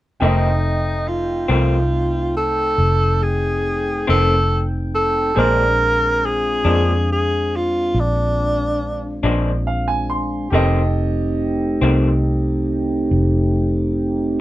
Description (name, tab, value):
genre	blues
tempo	46 BPM (dotted quarters)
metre	12/8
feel	straight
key	F mixolydian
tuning	A4 = 439 Hz
part	warm tenor saxophone	melody	0.2-9.3 s	D4 to Bb4	-19 LUFS	equal	none
part	bright upright piano	accompaniment	0.2-14.4 s	A3 to C6	-26 LUFS	right 2 dB	none
part	electric guitar through a small old amp	accompaniment	0.2-12.1 s	F2 to D4	-21 LUFS	left 3 dB	tremolo
part	mellow tonewheel organ	sustained chords	0.2-14.4 s	Ab3 to G5	-24 LUFS	right 1 dB	slow rotary speaker
part	vintage muted fingered electric bass	bass	0.2-14.4 s	F1 to F2	-20 LUFS	equal	none
room	light reverb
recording	band playing live in one room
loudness	-16 LUFS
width	side -16 dB against mid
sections	0.2-14.4 A section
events	upright piano fill 9.2-10.5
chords	0.2 F7; 5.4 Bb7; 10.5 F7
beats	| 0.22 1.50 2.79 4.08 | 5.37 6.66 7.95 9.24 | 10.53 11.82 13.11 14.40